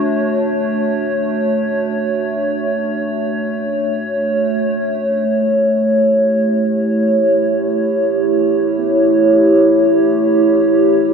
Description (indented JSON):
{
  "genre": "ambient",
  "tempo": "free time",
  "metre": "none",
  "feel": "none",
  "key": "A mixolydian",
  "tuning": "A4 = 440 Hz",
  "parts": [
    { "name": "warbly tape-like pad", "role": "sustained chords", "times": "0.0-11.1 s", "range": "A3 to C#5", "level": "-13 LUFS", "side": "right 1 dB", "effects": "chorus, built-in reverb" },
    { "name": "soft round pluck", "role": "arpeggios", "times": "5.8-11.1 s", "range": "none", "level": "barely audible", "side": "none", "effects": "none" }
  ],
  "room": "wet lush hall reverb, RT60 2.8 s",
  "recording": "dreamy mix soaked in reverb",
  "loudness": "-13 LUFS",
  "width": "side -6 dB against mid",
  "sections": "0.0-5.3 A section; 5.3-11.1 B section",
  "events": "none",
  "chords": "0.0 Dmaj7/A; 5.3 A7",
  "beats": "free time"
}